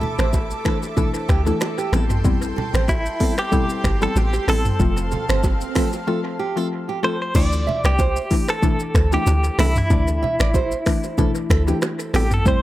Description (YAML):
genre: afrobeats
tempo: 94 BPM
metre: 4/4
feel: swing 55% on 16ths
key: D dorian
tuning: A4 = 440 Hz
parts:
  - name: mallet-like synth pluck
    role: accompaniment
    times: 0.0-12.6 s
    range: E3 to F4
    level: -26 LUFS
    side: left 4 dB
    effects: chorus, dub echo
  - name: lush unison pad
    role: sustained chords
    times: 0.0-7.3 s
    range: A4 to D6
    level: -32 LUFS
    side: right 1 dB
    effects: chorus
  - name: nylon-string guitar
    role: riff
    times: 0.0-12.6 s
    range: G4 to E5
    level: -28 LUFS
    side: right 5 dB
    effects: dub echo
  - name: deep log drum bass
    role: bass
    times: 0.0-12.6 s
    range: F1 to D2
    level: -20 LUFS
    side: equal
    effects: none
  - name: congas and bongos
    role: percussion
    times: 0.0-12.6 s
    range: none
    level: -30 LUFS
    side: right 4 dB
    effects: dub echo
  - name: afro-pop drum kit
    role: drums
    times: 0.2-12.6 s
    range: crash cymbal, finger snaps, hi-hat, kick drum, rim click, shaker, toms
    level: -22 LUFS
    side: equal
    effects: dub echo
  - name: swell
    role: sound effects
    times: 4.4-6.1 s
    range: none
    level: -32 LUFS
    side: right 6 dB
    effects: none
  - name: direct-recorded clean electric guitar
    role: melody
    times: 2.9-12.6 s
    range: E4 to D5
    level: -26 LUFS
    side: equal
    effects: tremolo, dub echo
room: light reverb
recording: echo-heavy mix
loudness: -17 LUFS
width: side -15 dB against mid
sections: 0.0-7.4 A section; 7.4-12.6 B section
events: swell 4.4-7.4; break 6.1-7.4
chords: 0.0 Dsus2; 1.9 Am7; 4.8 F; 7.4 Dsus2